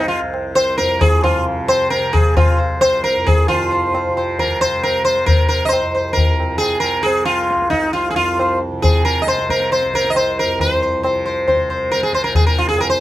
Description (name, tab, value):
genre	indian classical, Hindustani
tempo	135 BPM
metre	4/4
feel	straight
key	unclear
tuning	A4 = 440 Hz
part	sitar	melody	0.0-13.0 s	Eb4 to Eb5	-16 LUFS	equal	none
part	tanpura	drone	0.0-13.0 s	C2 to C3	-25 LUFS	equal	none
part	tabla	percussion	0.3-12.9 s	none	-18 LUFS	left 1 dB	none
room	little or no reverb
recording	close, detailed microphones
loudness	-14 LUFS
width	side -15 dB against mid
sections	0.0-3.5 A section; 3.5-13.0 B section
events	speeding up 0.0-13.0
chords	none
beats	0.33 0.78 1.23 | 1.69 2.14 2.59 3.04 | 3.49 3.94 4.38 4.83 | 5.28 5.72 6.17 6.62 | 7.06 7.50 7.95 8.39 | 8.83 9.27 9.71 10.15 | 10.60 11.03 11.47 11.91 | 12.35 12.78